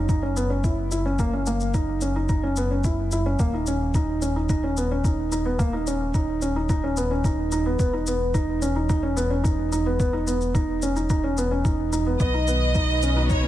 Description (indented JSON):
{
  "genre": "piano and strings electronica",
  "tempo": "109 BPM",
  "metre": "4/4",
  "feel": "straight",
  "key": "unclear",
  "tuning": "A4 = 440 Hz",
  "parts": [
    { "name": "felt-muted upright piano", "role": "riff", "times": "0.0-13.5 s", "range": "A#3 to E4", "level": "-25 LUFS", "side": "equal", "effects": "ping-pong delay" },
    { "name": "round analog bass", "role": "bass", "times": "0.0-13.5 s", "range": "D#1 to B1", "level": "-26 LUFS", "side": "equal", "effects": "sidechain pumping" },
    { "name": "electronic kick drum", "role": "drums", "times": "0.1-13.4 s", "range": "none", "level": "-23 LUFS", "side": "equal", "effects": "none" },
    { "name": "shaker", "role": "drums", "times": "0.1-13.4 s", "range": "none", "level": "-37 LUFS", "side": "left 4 dB", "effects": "none" },
    { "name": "warm studio violin section", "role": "melody", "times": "12.2-13.5 s", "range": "C#5 to D#5", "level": "-25 LUFS", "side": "right 1 dB", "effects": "none" },
    { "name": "dark studio string section", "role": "sustained chords", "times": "12.2-13.5 s", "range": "D#3 to B4", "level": "-33 LUFS", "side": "left 3 dB", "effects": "sidechain pumping" }
  ],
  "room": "light reverb, small room ambience",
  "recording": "none",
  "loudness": "-21 LUFS",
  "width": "side -13 dB against mid",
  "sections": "0.0-13.5 A section",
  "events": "none",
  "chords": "0.0 F#7(no3); 3.4 D#5; 7.8 E5; 12.2 B",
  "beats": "0.09 0.64 | 1.19 1.74 2.29 2.84 | 3.39 3.94 4.49 5.04 | 5.59 6.14 6.70 7.25 | 7.80 8.35 8.90 9.45 | 10.00 10.55 11.10 11.65 | 12.20 12.75 13.30"
}